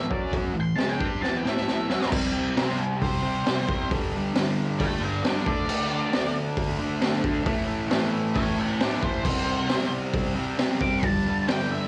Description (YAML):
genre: garage rock duo or trio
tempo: 135 BPM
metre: 4/4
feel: straight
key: unclear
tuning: A4 = 440 Hz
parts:
  - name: octave-fuzz lead guitar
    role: melody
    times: 0.0-11.9 s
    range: E4 to D6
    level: -33 LUFS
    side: equal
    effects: distortion, cassette tape
  - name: fuzz guitar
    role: riff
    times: 0.0-11.9 s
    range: G2 to A4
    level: -29 LUFS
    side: equal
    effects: distortion, cassette tape
  - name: raw garage drum kit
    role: drums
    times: 0.1-11.6 s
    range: crash cymbal, hi-hat, kick drum, snare drum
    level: -30 LUFS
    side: equal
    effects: cassette tape
room: light reverb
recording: home recording on cassette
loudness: -26 LUFS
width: mono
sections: 0.0-2.1 A section; 2.1-11.9 B section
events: drum fill 1.2-2.1; lead electric guitar solo 2.1-11.9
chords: 0.1 F#5; 0.6 A; 2.1 C; 3.9 G5; 5.5 D5; 7.5 A5; 9.2 C5; 11.0 G5